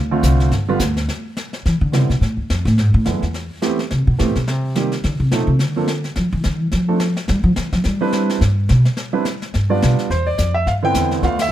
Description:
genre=jazz piano trio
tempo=213 BPM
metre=4/4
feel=swing 59% on 8ths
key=C major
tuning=A4 = 444 Hz
part: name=upright bass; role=bass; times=0.0-11.5 s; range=G1 to G3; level=-17 LUFS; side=equal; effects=none
part: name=warm concert grand piano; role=melody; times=0.1-11.5 s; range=D3 to G5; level=-20 LUFS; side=right 4 dB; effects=none
part: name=jazz brush drum kit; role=drums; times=0.2-11.5 s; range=brushed snare drum, hi-hat, kick drum, ride cymbal, snare drum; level=-26 LUFS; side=left 2 dB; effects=none
room=little or no reverb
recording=close, detailed microphones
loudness=-16 LUFS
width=side -12 dB against mid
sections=0.0-1.1 A section; 1.1-10.1 A section; 10.1-11.5 B section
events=grand piano solo 0.0-1.1; upright bass solo 1.1-10.1; band accent 11.4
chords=0.0 Dm7; 0.5 G5; 1.1 Cmaj9; 2.2 Dm; 2.8 E7; 3.3 Am9; 4.5 Cm7; 5.0 F7; 5.6 Bb (rootless); 6.7 Dm (rootless); 7.3 Em; 7.8 Cmaj9

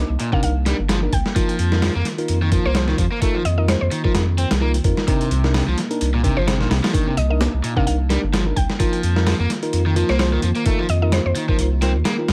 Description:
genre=breakbeat, breaks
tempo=129 BPM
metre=4/4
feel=swing 56% on 16ths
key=unclear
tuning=A4 = 444 Hz
part: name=warbly tape-like pad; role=sustained chords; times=0.1-12.3 s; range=Eb3 to F4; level=-33 LUFS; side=equal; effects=none
part: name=mellow tine electric piano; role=stabs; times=0.0-12.3 s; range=D4 to Bb4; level=-29 LUFS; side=equal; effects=digital delay
part: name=saturated sub bass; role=bass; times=0.0-12.3 s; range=G1 to F2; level=-22 LUFS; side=equal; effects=none
part: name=crunchy overdriven guitar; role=riff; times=0.2-12.1 s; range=Bb2 to C4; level=-27 LUFS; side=equal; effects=digital delay
part: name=dusty soul sampler-style drum kit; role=drums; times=0.2-12.3 s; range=hi-hat, kick drum, snare drum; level=-24 LUFS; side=equal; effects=overdrive
part: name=mallet-like synth pluck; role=melody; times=0.3-11.3 s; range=C5 to G5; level=-30 LUFS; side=equal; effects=chorus, AM radio sound, digital delay
room=light reverb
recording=vinyl crackle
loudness=-19 LUFS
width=mono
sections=0.0-12.3 A section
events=none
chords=0.0 Cm9; 1.4 F7sus4; 5.1 Cm9; 8.8 F7sus4

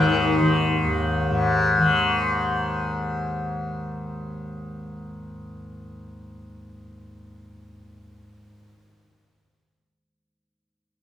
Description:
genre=indian classical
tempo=179 BPM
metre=4/4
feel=straight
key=unclear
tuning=A4 = 441 Hz
part: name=sitar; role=melody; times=0.0-0.7 s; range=Eb3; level=-27 LUFS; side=left 3 dB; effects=none
part: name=tanpura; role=drone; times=0.0-8.9 s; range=Eb2 to Eb3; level=-22 LUFS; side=left 1 dB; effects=none
room=moderate studio reverb, RT60 0.5 s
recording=band playing live in one room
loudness=-20 LUFS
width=side -10 dB against mid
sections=0.0-2.1 A section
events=none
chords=none

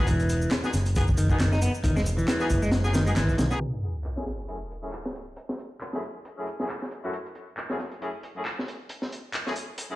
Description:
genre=breakbeat, breaks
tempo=136 BPM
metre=4/4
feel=swing 57% on 16ths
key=F# dorian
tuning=A4 = 440 Hz
part: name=warm horn section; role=stabs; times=0.0-10.0 s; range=F#2 to G#4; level=-34 LUFS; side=left 1 dB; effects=low-pass filter, ping-pong delay
part: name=modern bright picked electric bass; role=bass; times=0.0-3.5 s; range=E1 to B1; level=-25 LUFS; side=equal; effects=none
part: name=clean electric guitar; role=riff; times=0.1-3.4 s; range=D#3 to D#4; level=-28 LUFS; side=equal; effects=overdrive, ping-pong delay
part: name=crunchy breakbeat drum kit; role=drums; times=0.1-9.9 s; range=hi-hat, kick drum, snare drum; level=-29 LUFS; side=equal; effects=high-pass filter on kick, high-pass filter on hats, high-pass filter on snare, high-pass filter on room
part: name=electronic shaker and handclaps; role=drums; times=0.1-9.4 s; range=none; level=-36 LUFS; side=equal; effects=none
part: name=sub drop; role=sound effects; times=3.6-5.4 s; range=none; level=-33 LUFS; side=equal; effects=none
room=light reverb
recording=played on a big sound system in a bare room, large studio reverb, vinyl crackle, low-pass filter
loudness=-25 LUFS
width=side -18 dB against mid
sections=0.0-3.6 A section; 3.6-10.0 B section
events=impact 3.6-5.4; filter sweep on horn section 3.6-10.0; filter sweep 3.6-10.0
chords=0.0 Emaj7; 3.6 F#m7

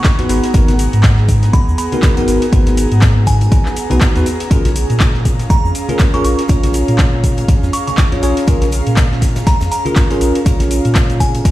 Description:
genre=deep house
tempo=121 BPM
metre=4/4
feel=swing 57% on 16ths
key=unclear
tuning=A4 = 444 Hz
part: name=deep house drum kit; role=drums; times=0.0-11.5 s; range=handclaps, hi-hat, shaker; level=-23 LUFS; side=equal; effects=overdrive
part: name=electronic kick drum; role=drums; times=0.0-11.5 s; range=none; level=-13 LUFS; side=equal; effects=overdrive
part: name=loose indie drum kit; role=drums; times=0.0-11.5 s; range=hi-hat, shaker, snare drum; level=-33 LUFS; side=equal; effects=none
part: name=airy breathy pad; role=texture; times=0.0-11.5 s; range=B3 to A#5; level=-24 LUFS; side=right 2 dB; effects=chorus, sidechain pumping
part: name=bell-like tine electric piano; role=stabs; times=0.2-11.5 s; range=B3 to C#5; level=-18 LUFS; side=left 1 dB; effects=lush chorus, sidechain pumping, ping-pong delay
part: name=congas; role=percussion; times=0.2-11.5 s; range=none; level=-26 LUFS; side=left 2 dB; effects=none
part: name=warm sub bass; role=bass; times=0.3-11.4 s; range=G#1 to A#2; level=-15 LUFS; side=equal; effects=tube saturation, sidechain pumping
part: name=glassy synth bell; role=melody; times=1.5-11.5 s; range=G#5 to C#6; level=-24 LUFS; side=right 1 dB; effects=chorus, tremolo, vintage 12-bit sampler grit, dub echo
room=small room ambience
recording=played on a big sound system in a bare room, stone room reverb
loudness=-11 LUFS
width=side -15 dB against mid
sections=0.0-11.5 A section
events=none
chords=0.0 G#m9; 4.3 A#m7

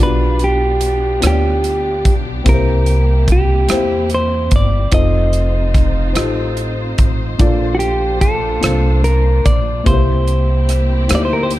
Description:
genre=slow gospel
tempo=49 BPM (dotted quarters)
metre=6/8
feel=straight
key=unclear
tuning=A4 = 440 Hz
part: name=clean electric guitar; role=melody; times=0.0-11.5 s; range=Gb4 to Eb5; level=-19 LUFS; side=equal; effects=none
part: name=dark upright piano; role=accompaniment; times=0.0-11.6 s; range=Bb2 to A5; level=-21 LUFS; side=left 2 dB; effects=none
part: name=warm studio string section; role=sustained chords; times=0.0-11.6 s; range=Bb3 to C5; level=-26 LUFS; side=right 1 dB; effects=none
part: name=upright bass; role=bass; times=0.0-11.6 s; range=F1 to E2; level=-16 LUFS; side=equal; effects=none
part: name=modern studio drum kit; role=drums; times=0.4-11.6 s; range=hi-hat, kick drum, rim click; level=-16 LUFS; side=equal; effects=none
room=light reverb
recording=dark, warm production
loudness=-12 LUFS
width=side -15 dB against mid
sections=0.0-11.6 A section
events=none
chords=0.0 G7/B; 2.5 C7; 4.9 F7; 7.4 Bbmaj7; 9.9 C7

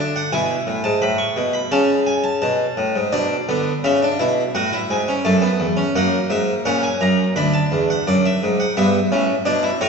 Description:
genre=classical, baroque-style 3-part fugue for harpsichord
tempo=85 BPM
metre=4/4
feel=straight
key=unclear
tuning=A4 = 442 Hz
part: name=harpsichord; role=solo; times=0.0-9.9 s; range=D2 to C#6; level=-16 LUFS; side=equal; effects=none
room=wet scoring stage reverb, RT60 2.0 s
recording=recorded in a church or concert hall, nothing above 7.8 kHz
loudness=-16 LUFS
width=side -5 dB against mid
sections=0.0-3.1 A section; 3.1-9.9 B section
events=none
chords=0.3 E; 1.7 A/C#; 3.1 E5/B; 4.6 A; 6.0 F#7; 7.4 Bm/D; 8.8 G

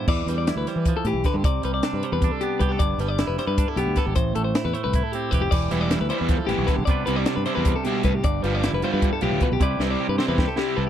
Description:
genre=math rock and midwest emo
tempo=309 BPM (eighths)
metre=7/8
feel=straight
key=C major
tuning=A4 = 441 Hz
part: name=clean electric guitar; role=accompaniment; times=0.0-10.9 s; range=G2 to B4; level=-28 LUFS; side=right 10 dB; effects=none
part: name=clean electric guitar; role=arpeggios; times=0.0-10.9 s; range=G4 to D5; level=-27 LUFS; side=left 9 dB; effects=none
part: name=growling fingered electric bass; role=bass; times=0.1-10.9 s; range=E1 to E3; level=-26 LUFS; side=equal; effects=overdrive
part: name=compact cocktail drum kit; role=drums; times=0.1-10.7 s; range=crash cymbal, hi-hat, kick drum, snare drum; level=-24 LUFS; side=equal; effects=none
part: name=overdriven electric guitar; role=riff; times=5.7-10.8 s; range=C3 to F4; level=-28 LUFS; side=right 2 dB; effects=spring reverb
room=little or no reverb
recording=dry, close 1970s-style studio recording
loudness=-20 LUFS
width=side -10 dB against mid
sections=0.1-10.9 A section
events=drum fill 9.8-10.9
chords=0.1 Em7; 1.4 Cmaj9; 2.8 G69; 4.2 Am9; 5.5 Em7; 6.9 Cmaj9; 8.2 G13; 9.6 Cmaj9

